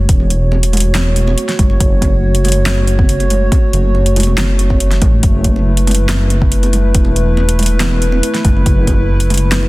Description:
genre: deep dubstep.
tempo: 140 BPM.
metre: 4/4.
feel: half-time.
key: F# minor.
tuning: A4 = 440 Hz.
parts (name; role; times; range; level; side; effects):
dark analog pad; sustained chords; 0.0-9.7 s; A3 to C#5; -19 LUFS; equal; chorus.
dark detuned saw bass; bass; 0.0-9.7 s; E1 to A1; -13 LUFS; equal; none.
deep house drum kit; drums; 0.1-9.6 s; handclaps, hi-hat, snare drum; -19 LUFS; equal; none.
electronic kick drum; drums; 0.1-9.0 s; none; -12 LUFS; equal; none.
congas; percussion; 0.2-9.7 s; none; -23 LUFS; right 2 dB; dub echo.
room: digital ambience.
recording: dense, heavily limited modern master.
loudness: -10 LUFS.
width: side -20 dB against mid.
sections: 0.0-9.7 A section.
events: none.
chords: 0.0 F#m.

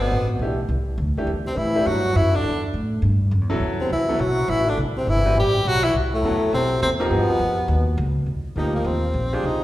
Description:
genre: modal jazz.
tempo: 206 BPM.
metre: 4/4.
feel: swing 60% on 8ths.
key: A dorian.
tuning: A4 = 440 Hz.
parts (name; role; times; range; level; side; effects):
clear tenor saxophone; melody; 0.0-9.6 s; A3 to G4; -23 LUFS; equal; none.
clear trombone; second line; 0.0-8.1 s; A2 to G3; -28 LUFS; left 1 dB; none.
upright bass; bass; 0.0-9.6 s; G1 to A2; -22 LUFS; equal; none.
bright upright piano; accompaniment; 0.4-9.6 s; E3 to B4; -27 LUFS; equal; none.
room: wet recital hall reverb, RT60 1.8 s.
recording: recorded in a church or concert hall.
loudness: -19 LUFS.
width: side -15 dB against mid.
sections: 0.0-8.3 A section; 8.3-9.6 B section.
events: tenor saxophone solo 8.3-9.6.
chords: 0.0 Am9; 7.1 G7alt; 8.3 Cm11.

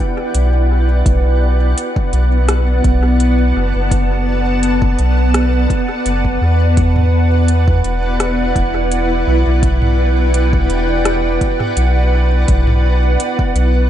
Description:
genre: ambient dub.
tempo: 84 BPM.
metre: 4/4.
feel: swing 53% on 16ths.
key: E minor.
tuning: A4 = 442 Hz.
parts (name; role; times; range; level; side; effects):
granular cloud pad; sustained chords; 0.0-13.9 s; B3 to A5; -17 LUFS; right 1 dB; built-in reverb.
soft dub sub bass; bass; 0.3-13.9 s; E1 to E2; -14 LUFS; equal; none.
organic electronic drum kit; drums; 0.3-13.7 s; hi-hat, rim click, toms; -23 LUFS; equal; studio reverb, dub echo.
electronic kick drum; drums; 1.1-13.5 s; none; -17 LUFS; equal; overdrive, studio reverb.
room: light reverb.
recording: nothing above 10.6 kHz.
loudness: -12 LUFS.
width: side -11 dB against mid.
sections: 0.0-13.9 A section.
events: none.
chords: 0.0 Em7; 1.1 Bm7; 6.8 Em7; 12.5 Bm.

